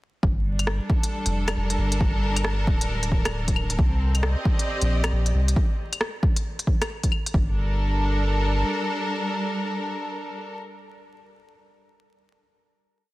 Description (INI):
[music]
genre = future garage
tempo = 135 BPM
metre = 4/4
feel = swing 62% on 16ths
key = G minor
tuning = A4 = 440 Hz
[part]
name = clear studio string section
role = sustained chords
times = 0.2-10.6 s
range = G3 to Eb5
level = -28 LUFS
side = equal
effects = sidechain pumping
[part]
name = soft dub sub bass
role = bass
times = 0.2-8.6 s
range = D1 to C2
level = -24 LUFS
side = equal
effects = sidechain pumping
[part]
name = electronic kick drum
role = drums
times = 0.2-7.5 s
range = none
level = -23 LUFS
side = equal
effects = studio reverb
[part]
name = organic electronic drum kit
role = drums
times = 0.6-7.3 s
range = claves, hi-hat, rim click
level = -28 LUFS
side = left 1 dB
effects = studio reverb, soft clipping on snare
[sound]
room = digital ambience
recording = dense, heavily limited modern master, vinyl crackle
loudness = -22 LUFS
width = side -18 dB against mid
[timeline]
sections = 0.2-7.3 groove; 7.3-10.9 final chord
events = none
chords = 0.2 Gm7; 3.8 Cm7; 5.6 N.C.; 7.3 Gm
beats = | 0.23 0.67 1.12 1.56 | 2.01 2.45 2.90 3.34 | 3.79 4.23 4.67 5.12 | 5.56 6.01 6.45 6.90 | 7.34 7.79 8.23 8.67 | 9.12 9.56 10.01 10.45